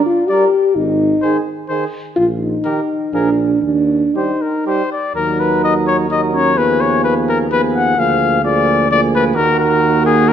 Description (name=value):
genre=classical, brass quintet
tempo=117-133 BPM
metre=3/4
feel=rubato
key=Eb major, Eb minor from 5.2 s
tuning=A4 = 436 Hz
part: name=mellow French horn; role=accompaniment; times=0.0-10.3 s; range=Bb3 to G4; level=-17 LUFS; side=equal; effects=none
part: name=warm trumpet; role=melody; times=0.3-10.3 s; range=Ab4 to Gb5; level=-16 LUFS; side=left 5 dB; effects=none
part: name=mellow trumpet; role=second line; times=0.3-10.3 s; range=Gb4 to Bb4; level=-22 LUFS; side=right 7 dB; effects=none
part: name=warm trombone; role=accompaniment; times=0.3-10.3 s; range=Eb3 to G3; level=-22 LUFS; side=right 5 dB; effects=none
part: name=clear bass trombone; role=bass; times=0.8-10.3 s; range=Ab1 to Eb2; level=-21 LUFS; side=right 2 dB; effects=none
room=wet recital hall reverb, RT60 1.4 s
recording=none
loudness=-13 LUFS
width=side -9 dB against mid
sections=0.0-5.2 A section; 5.2-10.3 B section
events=none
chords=0.0 Gm; 0.8 Ab; 2.2 Eb5/Bb; 3.1 Bb7; 3.6 Eb; 5.2 Ebm; 6.6 Fm7b5/Eb; 8.0 Bb7/D; 9.4 Ebm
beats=0.30 | 0.76 1.22 1.69 | 2.16 2.65 3.13 | 3.63 4.15 4.65 | 5.15 5.63 6.09 | 6.56 7.03 7.50 | 7.97 8.44 8.90 | 9.36 9.82 10.29